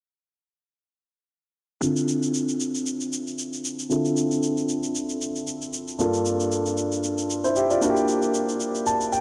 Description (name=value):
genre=amapiano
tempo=115 BPM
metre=4/4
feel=swing 55% on 16ths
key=D minor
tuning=A4 = 440 Hz
part: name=clear concert grand piano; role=accompaniment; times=1.8-9.2 s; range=G2 to A5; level=-25 LUFS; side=equal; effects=low-pass filter
part: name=shaker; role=drums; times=1.8-9.2 s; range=none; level=-34 LUFS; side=equal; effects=overdrive
room=wet huge ambient reverb, RT60 6.7 s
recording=dreamy mix soaked in reverb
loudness=-25 LUFS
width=mono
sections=1.8-9.2 A section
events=filter sweep on grand piano 1.8-9.2; grand piano fill 8.6-9.2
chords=1.8 Dm9; 6.0 Gm9; 7.8 Em7b5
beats=| 1.82 2.34 2.86 3.39 | 3.91 4.43 4.95 5.47 | 6.00 6.52 7.04 7.56 | 8.08 8.60 9.12